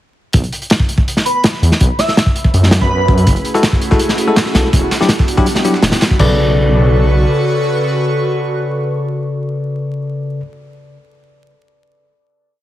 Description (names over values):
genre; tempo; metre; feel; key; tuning
drum and bass, jungle; 164 BPM; 4/4; straight; B minor; A4 = 440 Hz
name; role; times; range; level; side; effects
detuned saw bass; bass; 0.3-7.3 s; D1 to F#2; -13 LUFS; equal; none
crunchy breakbeat drum kit; drums; 0.3-6.3 s; crash cymbal, hi-hat, kick drum, snare drum; -13 LUFS; equal; none
airy dreamy lead; melody; 1.3-3.3 s; B4 to E5; -20 LUFS; right 1 dB; chorus, dub echo
airy breathy pad; sustained chords; 3.3-9.9 s; C#3 to C#6; -19 LUFS; right 1 dB; chorus
breakbeat sampler-style drum kit; drums; 3.3-6.1 s; hi-hat, snare drum; -25 LUFS; right 2 dB; high-pass filter on hats, high-pass filter on snare
bell-like tine electric piano; stabs; 3.5-10.4 s; C#3 to D5; -17 LUFS; left 2 dB; dub echo
room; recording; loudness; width
light reverb, small room ambience; heavily compressed radio sound, vinyl crackle; -11 LUFS; side -13 dB against mid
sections
0.3-6.2 drop; 6.2-9.1 final chord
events
drop 0.3-6.2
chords
0.3 B5; 3.3 F#m9; 4.7 Em9; 6.2 Bm9